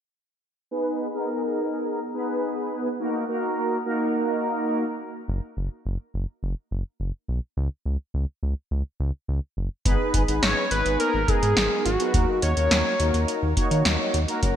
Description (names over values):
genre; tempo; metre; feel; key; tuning
synth-pop; 105 BPM; 4/4; straight; unclear; A4 = 440 Hz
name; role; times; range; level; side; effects
mellow synth brass; accompaniment; 0.7-4.8, 9.9-14.6 s; Bb3 to Db5; -25 LUFS; equal; chorus, low-pass filter
round analog bass; bass; 5.3-14.5 s; Gb1 to Eb3; -25 LUFS; equal; none
electro analog drum machine; drums; 9.9-14.6 s; hi-hat, kick drum, snare drum; -24 LUFS; equal; gated reverb
fat analog lead; melody; 10.4-13.5 s; Gb4 to Db5; -25 LUFS; equal; digital delay
room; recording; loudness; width
moderate lush hall reverb, RT60 2.1 s; bright 1980s-style digital production; -23 LUFS; side -9 dB against mid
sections
0.7-9.9 A section; 9.9-14.6 B section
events
none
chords
0.7 Abmadd9; 3.0 Ebm; 5.3 N.C.; 9.9 Abmadd9; 12.1 Ebm7